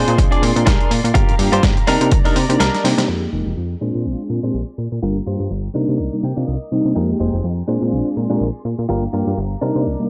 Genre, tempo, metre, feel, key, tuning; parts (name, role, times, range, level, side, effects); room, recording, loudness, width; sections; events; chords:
filtered disco house; 124 BPM; 4/4; swing 56% on 16ths; F dorian; A4 = 440 Hz
mellow synth brass; accompaniment; 0.0-10.1 s; G3 to Bb4; -24 LUFS; equal; chorus, phaser, sidechain pumping, low-pass filter
clear studio violin section; sustained chords; 0.0-10.1 s; Ab3 to D6; -33 LUFS; equal; sidechain pumping, low-pass filter
direct-recorded clean electric guitar; riff; 0.0-10.0 s; D4 to G5; -26 LUFS; equal; sidechain pumping, low-pass filter
plucky analog bass; bass; 0.0-10.1 s; F1 to C3; -23 LUFS; equal; sidechain pumping, low-pass filter
dusty soul sampler-style drum kit; drums; 0.1-3.1 s; hi-hat, snare drum; -24 LUFS; equal; overdrive, sidechain pumping on hats
electronic kick drum; drums; 0.2-2.2 s; -18 LUFS; equal
digital ambience; dry, gritty hardware recording, cassette tape; -18 LUFS; mono
0.0-3.1 A section; 3.1-10.1 B section
kick drops out 2.6-3.1; drum fill 2.7-3.1; band accent 3.0; filter sweep 3.1-10.1; clean electric guitar fill 6.0-7.0
0.0 Bb9; 1.2 Gm7; 1.9 Cm9; 3.1 Fm11; 3.8 Bb9; 5.0 Gm7; 5.8 Cm9; 7.0 Fm11; 7.7 Bb9; 8.9 Gm7